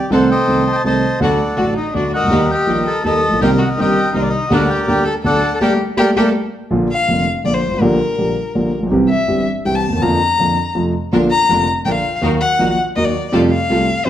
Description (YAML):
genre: tango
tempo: 164 BPM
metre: 3/4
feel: rubato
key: G harmonic minor, Bb major from 6.7 s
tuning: A4 = 439 Hz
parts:
  - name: bandoneon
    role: melody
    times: 0.0-6.3 s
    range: G4 to A5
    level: -18 LUFS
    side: equal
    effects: none
  - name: warm concert grand piano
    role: accompaniment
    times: 0.1-14.1 s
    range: F1 to A4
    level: -16 LUFS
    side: equal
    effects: none
  - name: clear chamber string section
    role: stabs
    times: 0.1-6.3, 11.1-14.1 s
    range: A3 to Bb4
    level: -25 LUFS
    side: right 2 dB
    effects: none
  - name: warm violin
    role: second line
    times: 1.6-14.1 s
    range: D4 to Bb5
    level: -19 LUFS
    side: left 3 dB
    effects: none
room: wet large studio reverb, RT60 1.2 s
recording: none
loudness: -13 LUFS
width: side -11 dB against mid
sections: 0.0-6.7 A section; 6.7-14.1 B section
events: band accent 5.6-6.7; violin solo 6.7-14.1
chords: 0.1 Adim/C; 1.2 D; 2.3 Eb; 3.4 Cm7; 4.5 Gm/D; 5.2 D; 5.6 Gmadd9; 6.7 Bb; 7.8 Gm/Bb; 8.9 C; 10.0 Bb/F; 10.8 F; 11.1 Bb; 12.2 Ebm; 13.3 Fadd9